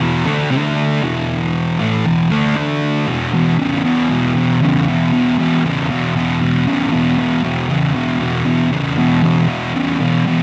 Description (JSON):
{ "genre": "rock", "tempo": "117 BPM", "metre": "4/4", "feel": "straight", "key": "unclear", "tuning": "A4 = 441 Hz", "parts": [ { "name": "fuzz guitar", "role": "solo", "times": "0.0-10.4 s", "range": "E2 to D4", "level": "-16 LUFS", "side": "equal", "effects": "distortion, analog delay" } ], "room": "wet large studio reverb, RT60 1.4 s", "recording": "none", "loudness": "-16 LUFS", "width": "mono", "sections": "0.0-3.1 A section; 3.1-10.4 B section", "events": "none", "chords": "0.0 E5; 0.5 D5; 1.0 E5; 2.6 D5; 3.1 E5" }